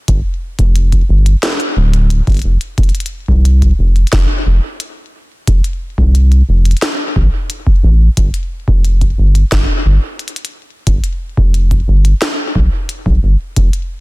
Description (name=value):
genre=IDM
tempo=89 BPM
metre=4/4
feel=straight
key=unclear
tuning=A4 = 440 Hz
part: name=round analog bass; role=bass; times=0.1-13.7 s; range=D1 to C2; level=-10 LUFS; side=equal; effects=none
part: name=electronic kick drum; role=drums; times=0.1-13.7 s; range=none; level=-15 LUFS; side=equal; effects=studio reverb
part: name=glitchy drum kit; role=drums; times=0.1-13.9 s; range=hi-hat, snare drum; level=-19 LUFS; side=left 1 dB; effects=studio reverb, ping-pong delay
room=digital ambience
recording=dense, heavily limited modern master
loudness=-10 LUFS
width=side -21 dB against mid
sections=0.0-14.0 A section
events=none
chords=none